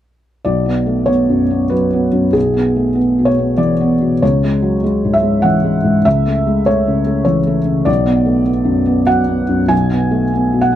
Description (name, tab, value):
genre	neoclassical minimalist piano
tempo	98 BPM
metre	3/4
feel	rubato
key	B dorian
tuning	A4 = 440 Hz
part	felt-muted upright piano	solo	0.4-10.8 s	B1 to G#5	-12 LUFS	equal	none
room	light reverb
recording	dark, warm production, faint mains hum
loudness	-12 LUFS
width	side -11 dB against mid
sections	0.5-10.8 A section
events	none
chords	0.5 Bmadd9; 2.3 E/B; 4.2 C#m; 6.0 A/C#; 7.9 Bm; 9.7 E/B (rootless)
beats	| 0.47 1.10 1.73 | 2.35 2.97 3.59 | 4.22 4.83 5.43 | 6.05 6.67 7.27 | 7.88 8.49 9.09 | 9.71 10.33